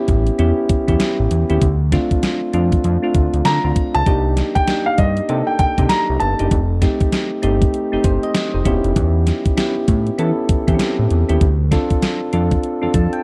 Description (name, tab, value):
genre	R&B, new jack swing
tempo	98 BPM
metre	4/4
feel	swing 61% on 16ths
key	unclear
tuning	A4 = 441 Hz
part	soft electric-piano-like synth keys	accompaniment	0.0-13.2 s	A3 to A5	-22 LUFS	equal	chorus
part	fat analog bass	bass	0.1-13.1 s	E1 to E3	-20 LUFS	equal	none
part	gated 80s digital drum machine	drums	0.1-13.2 s	hi-hat, kick drum, snare drum	-21 LUFS	equal	gated reverb, gated reverb snare, overdrive
part	warm baby grand piano	melody	3.5-6.8 s	Eb5 to Bb5	-22 LUFS	equal	slapback echo
room	little or no reverb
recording	dry, close 1970s-style studio recording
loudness	-17 LUFS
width	mono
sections	0.0-13.2 A section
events	synth keys fill 12.6-13.2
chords	0.0 A7; 1.6 Dm7; 4.1 Cm7; 6.5 F7; 8.7 A7/E; 11.4 Dm7